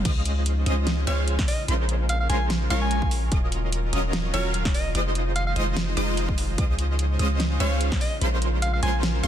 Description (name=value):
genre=future bass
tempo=147 BPM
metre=4/4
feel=swing 55% on 16ths, half-time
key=Bb minor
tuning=A4 = 440 Hz
part: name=wide unison pluck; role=arpeggios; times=0.0-9.3 s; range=C6 to F6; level=-36 LUFS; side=equal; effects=sidechain pumping
part: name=supersaw stab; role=riff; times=0.0-9.3 s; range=Gb3 to F5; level=-29 LUFS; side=right 1 dB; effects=lush chorus, sidechain pumping, digital delay
part: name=long sustained 808-style bass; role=bass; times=0.0-9.3 s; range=Eb1 to Db2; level=-25 LUFS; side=equal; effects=sidechain pumping
part: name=airy breathy pad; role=sustained chords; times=0.1-9.3 s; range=Db3 to F4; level=-37 LUFS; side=equal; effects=chorus, sidechain pumping
part: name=electronic kick drum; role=drums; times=0.1-8.0 s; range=none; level=-25 LUFS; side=equal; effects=none
part: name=pop drum kit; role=drums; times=0.1-9.3 s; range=crash cymbal, hi-hat, snare drum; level=-30 LUFS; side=right 1 dB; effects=none
part: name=clear alto saxophone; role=melody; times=1.1-9.3 s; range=Db5 to Ab5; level=-31 LUFS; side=equal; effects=sidechain pumping, dub echo
room=light reverb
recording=dense, heavily limited modern master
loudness=-22 LUFS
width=side -10 dB against mid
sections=0.1-9.3 A section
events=drop 0.1-9.3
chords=0.1 Dbmaj9; 1.5 Bbm9; 3.3 Ebm9; 4.9 Fm7; 6.6 Dbmaj9; 8.0 Bbm9